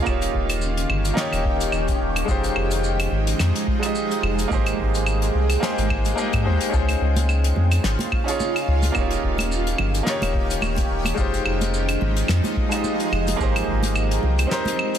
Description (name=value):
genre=sunset chillout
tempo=108 BPM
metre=4/4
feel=swing 56% on 16ths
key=F minor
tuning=A4 = 442 Hz
part: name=clear baby grand piano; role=accompaniment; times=0.0-15.0 s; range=Ab3 to Eb5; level=-26 LUFS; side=moving between left 6 dB and right 8 dB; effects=auto-pan, tape echo
part: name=shimmering ambient pad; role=sustained chords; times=0.0-15.0 s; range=C3 to G5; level=-27 LUFS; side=right 1 dB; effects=chorus, built-in reverb, phaser
part: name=warm sub bass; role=bass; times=0.1-14.5 s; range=Eb1 to Ab2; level=-22 LUFS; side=equal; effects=tube saturation
part: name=electronic kick drum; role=drums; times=0.1-13.8 s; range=none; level=-26 LUFS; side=equal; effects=none
part: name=soft brush drum kit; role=drums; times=0.1-15.0 s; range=claves, hi-hat, shaker, snare drum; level=-27 LUFS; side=equal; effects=none
part: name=congas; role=percussion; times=7.2-14.8 s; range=none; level=-32 LUFS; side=right 2 dB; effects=none
room=light reverb, studio reverb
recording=dense, heavily limited modern master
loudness=-19 LUFS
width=side -9 dB against mid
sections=0.0-15.0 A section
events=break 14.5-15.0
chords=0.1 Eb7; 2.3 Fm7; 4.5 Abmaj7; 6.7 Dbmaj7; 9.0 Eb7; 11.2 Fm7; 13.4 Abmaj7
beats=| 0.06 0.62 1.18 1.73 | 2.29 2.84 3.40 3.95 | 4.51 5.06 5.62 6.17 | 6.73 7.29 7.84 8.40 | 8.95 9.51 10.06 10.62 | 11.18 11.73 12.29 12.84 | 13.40 13.95 14.51